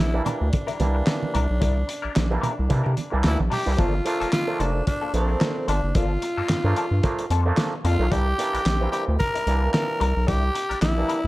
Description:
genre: funk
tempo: 111 BPM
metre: 4/4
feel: swing 56% on 16ths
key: G dorian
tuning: A4 = 438 Hz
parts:
  - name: growling tenor saxophone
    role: melody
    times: 0.0-11.3 s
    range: C4 to Bb4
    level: -27 LUFS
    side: equal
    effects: none
  - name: semi-hollow electric guitar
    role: accompaniment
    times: 0.0-11.3 s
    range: F3 to Bb4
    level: -32 LUFS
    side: left 6 dB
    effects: wah, ensemble chorus
  - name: round analog bass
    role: bass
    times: 0.0-11.3 s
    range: F1 to C3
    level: -22 LUFS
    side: equal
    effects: none
  - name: overdriven clav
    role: stabs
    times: 0.1-11.2 s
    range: E3 to D4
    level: -29 LUFS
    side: right 3 dB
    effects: auto-wah
  - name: cloth-damped thuddy drum kit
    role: drums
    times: 0.3-11.2 s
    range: handclaps, hi-hat, kick drum, snare drum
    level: -26 LUFS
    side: equal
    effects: none
  - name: congas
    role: percussion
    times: 0.3-3.7 s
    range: none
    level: -30 LUFS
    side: right 4 dB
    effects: none
room: light reverb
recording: dark, warm production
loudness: -20 LUFS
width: side -18 dB against mid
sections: 0.0-3.8 A section; 3.8-11.3 A section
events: none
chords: 0.0 C9; 3.8 Gm9; 8.1 C9

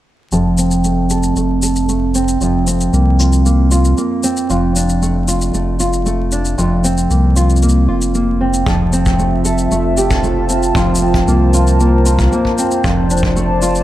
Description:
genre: folktronica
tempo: 115 BPM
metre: 4/4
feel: straight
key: F major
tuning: A4 = 439 Hz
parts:
  - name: nylon-string guitar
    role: arpeggios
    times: 0.3-13.8 s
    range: F2 to A4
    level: -15 LUFS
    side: right 1 dB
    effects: vintage 12-bit sampler grit, low-pass filter, tape echo
  - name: warm sub bass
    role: bass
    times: 0.3-13.8 s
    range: F1 to C2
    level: -16 LUFS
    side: equal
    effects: none
  - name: shaker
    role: drums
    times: 0.3-13.8 s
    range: none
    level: -24 LUFS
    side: left 2 dB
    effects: overdrive, studio reverb
  - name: warbly tape-like pad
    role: sustained chords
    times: 9.3-13.8 s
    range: F4 to A5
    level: -18 LUFS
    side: right 1 dB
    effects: chorus, built-in reverb
  - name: kick drum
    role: drums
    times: 8.7-13.3 s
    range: none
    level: -19 LUFS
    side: equal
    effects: studio reverb
room: light reverb, small room reverb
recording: vinyl crackle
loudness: -12 LUFS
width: side -14 dB against mid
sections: 0.3-13.8 A section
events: filter sweep on sub bass 0.3-13.8; filter sweep on nylon-string guitar 0.3-13.8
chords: 0.3 F; 2.4 Fsus4; 4.5 D5/F; 6.6 Fsus4; 8.7 Fmaj7; 10.8 Fadd11; 12.8 D5/F

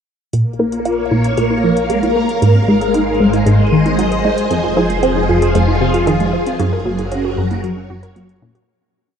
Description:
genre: ambient, sequencer-driven space music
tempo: 115 BPM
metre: 4/4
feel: straight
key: Bb minor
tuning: A4 = 441 Hz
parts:
  - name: phased string machine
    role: sustained chords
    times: 0.6-8.7 s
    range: F3 to F5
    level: -17 LUFS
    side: equal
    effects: ensemble chorus, phaser
  - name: warbly dusty pluck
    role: arpeggios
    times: 0.3-8.6 s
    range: Ab3 to Bb4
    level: -24 LUFS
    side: right 3 dB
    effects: chorus, auto-pan, ping-pong delay
  - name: resonant blip pluck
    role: riff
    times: 0.3-8.5 s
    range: F2 to F4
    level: -16 LUFS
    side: equal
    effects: phaser, ping-pong delay
  - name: fat analog bass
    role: bass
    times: 0.3-8.7 s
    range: F1 to Bb1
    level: -24 LUFS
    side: equal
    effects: none
  - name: electronic hi-hat and bongos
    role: percussion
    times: 0.3-8.7 s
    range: none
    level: -28 LUFS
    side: equal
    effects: ping-pong delay
room: moderate huge ambient reverb, RT60 7.7 s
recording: dark, warm production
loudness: -13 LUFS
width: side -7 dB against mid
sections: 0.3-8.7 A section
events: fade-in on synth arpeggio sound 0.3-8.7; fade-in on analog synth bass 0.3-8.7; fade-out 5.9-8.7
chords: 0.3 Bbm; 2.4 Ab; 4.5 Fm; 6.6 Gb

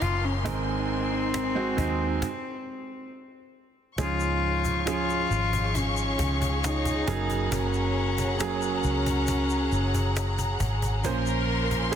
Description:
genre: pop ballad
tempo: 68 BPM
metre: 4/4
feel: straight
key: Db major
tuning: A4 = 440 Hz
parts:
  - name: dark cello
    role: melody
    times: 0.0-10.6 s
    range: C4 to F4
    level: -30 LUFS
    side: left 3 dB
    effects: none
  - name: clear upright piano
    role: accompaniment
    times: 0.0-12.0 s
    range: Ab2 to C5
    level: -30 LUFS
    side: right 6 dB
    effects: none
  - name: dark studio string section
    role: sustained chords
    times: 0.0-12.0 s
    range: Db4 to Db6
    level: -32 LUFS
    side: left 2 dB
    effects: none
  - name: vintage muted fingered electric bass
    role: bass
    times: 0.0-12.0 s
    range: Gb1 to Eb2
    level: -29 LUFS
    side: equal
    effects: none
  - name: cajon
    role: drums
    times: 0.0-12.0 s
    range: none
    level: -34 LUFS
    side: left 1 dB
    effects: none
  - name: noise sweep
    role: sound effects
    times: 0.0-2.2 s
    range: none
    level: -42 LUFS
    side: left 3 dB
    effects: none
  - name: egg shaker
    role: percussion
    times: 4.0-12.0 s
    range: none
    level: -43 LUFS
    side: left 9 dB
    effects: none
  - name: warm studio violin section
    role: second line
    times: 11.0-12.0 s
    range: Bb4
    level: -32 LUFS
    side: left 2 dB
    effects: none
room: light reverb, studio reverb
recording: dense, heavily limited modern master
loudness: -24 LUFS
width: side -9 dB against mid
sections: 0.0-4.0 A section; 4.0-12.0 B section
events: noise sweep 0.0-4.0; stop 2.2-4.0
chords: 0.5 Abadd9; 4.0 Db; 7.1 Gbadd9; 11.0 Bbmadd9

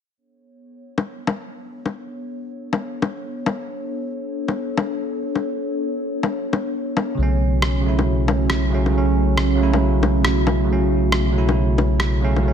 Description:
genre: future garage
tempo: 137 BPM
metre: 4/4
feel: swing 65% on 16ths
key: B minor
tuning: A4 = 437 Hz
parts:
  - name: warbly tape-like pad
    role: sustained chords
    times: 1.1-12.5 s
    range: A3 to C#5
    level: -25 LUFS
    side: equal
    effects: chorus, built-in reverb
  - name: electronic bongos and rim click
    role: drums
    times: 1.0-12.4 s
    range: none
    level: -24 LUFS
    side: left 3 dB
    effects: none
  - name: bell-like tine electric piano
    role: accompaniment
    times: 7.1-12.5 s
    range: C#3 to E4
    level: -22 LUFS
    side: right 3 dB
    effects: vintage 12-bit sampler grit, digital delay
  - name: dark detuned saw bass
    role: bass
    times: 7.2-12.5 s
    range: B1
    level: -20 LUFS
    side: equal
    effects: none
room: moderate lush hall reverb, RT60 1.8 s, digital ambience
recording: none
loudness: -18 LUFS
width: side -8 dB against mid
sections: 0.2-12.5 A section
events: filter sweep on ambient pad 0.2-12.5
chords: 0.2 Bm9; 7.2 F#m/B

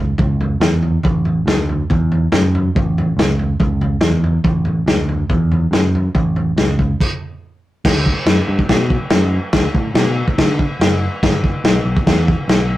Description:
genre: garage rock duo or trio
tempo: 142 BPM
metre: 4/4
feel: straight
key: A mixolydian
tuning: A4 = 440 Hz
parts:
  - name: picked electric bass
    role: bass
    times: 0.0-12.7 s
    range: F#1 to D3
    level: -17 LUFS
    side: equal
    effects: none
  - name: vintage drum kit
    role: drums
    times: 0.2-12.6 s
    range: crash cymbal, kick drum, snare drum, toms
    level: -16 LUFS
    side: equal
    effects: none
room: light reverb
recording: rough rehearsal-room recording, tube saturation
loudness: -14 LUFS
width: side -15 dB against mid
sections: 0.0-7.8 A section; 7.8-12.8 B section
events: stop 7.0-7.8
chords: none

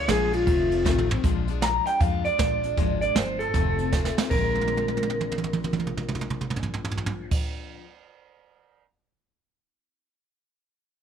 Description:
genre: rockabilly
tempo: 156 BPM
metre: 4/4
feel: swing 63% on 8ths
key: Bb mixolydian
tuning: A4 = 440 Hz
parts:
  - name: electric guitar through a small old amp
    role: melody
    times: 0.0-7.3 s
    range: F4 to Bb5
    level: -26 LUFS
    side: equal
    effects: tape echo
  - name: picked steel-string acoustic guitar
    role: accompaniment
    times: 0.0-7.9 s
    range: F2 to F4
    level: -32 LUFS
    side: left 14 dB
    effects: none
  - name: upright bass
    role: bass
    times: 0.0-7.3 s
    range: F1 to F2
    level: -30 LUFS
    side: equal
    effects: none
  - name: jazz brush drum kit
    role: drums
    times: 0.1-8.8 s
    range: crash cymbal, hi-hat, kick drum, ride cymbal, snare drum, toms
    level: -26 LUFS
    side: right 3 dB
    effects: none
room: light reverb, small room reverb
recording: 1960s-style stereo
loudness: -22 LUFS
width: side -8 dB against mid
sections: 0.0-1.2 A section; 1.2-4.3 B section; 4.3-7.4 C section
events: drum fill 0.9-1.2, 3.9-4.3, 4.5-7.3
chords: 0.5 F7; 1.2 Bb7; 3.5 F7; 4.3 Bb9

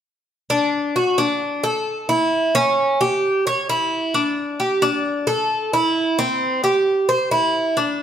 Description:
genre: latin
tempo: 132 BPM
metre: 4/4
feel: straight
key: D major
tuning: A4 = 436 Hz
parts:
  - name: Cuban tres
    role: solo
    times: 0.5-8.0 s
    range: C4 to C#5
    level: -17 LUFS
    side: equal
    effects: none
room: wet stone room reverb, RT60 1.4 s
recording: band playing live in one room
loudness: -17 LUFS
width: side -9 dB against mid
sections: 0.5-8.0 A section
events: none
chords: none

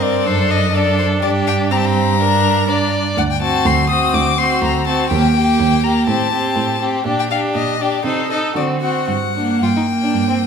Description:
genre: quick classical-period movement for string quartet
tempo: 123 BPM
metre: 4/4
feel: rubato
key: G minor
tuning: A4 = 441 Hz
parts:
  - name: clear violin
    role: melody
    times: 0.0-10.5 s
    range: C5 to Eb6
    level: -20 LUFS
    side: left 8 dB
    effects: none
  - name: clear violin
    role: second line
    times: 0.0-10.4 s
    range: C4 to D5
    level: -21 LUFS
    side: left 3 dB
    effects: none
  - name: clear viola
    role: accompaniment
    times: 0.0-10.5 s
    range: Bb3 to Eb4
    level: -20 LUFS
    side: right 3 dB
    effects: none
  - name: rich cello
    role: bass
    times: 0.0-10.5 s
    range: D2 to D3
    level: -20 LUFS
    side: right 4 dB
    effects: none
room: wet recital hall reverb, RT60 1.5 s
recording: minimal, uncompressed stereo recording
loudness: -14 LUFS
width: side -6 dB against mid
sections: 0.0-10.5 A section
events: none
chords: 0.3 D/F#; 1.2 Gm; 3.2 D7; 5.1 Eb; 6.1 Am7; 7.1 Gm/Bb; 8.1 Adim/C; 8.6 D7; 9.1 Gm

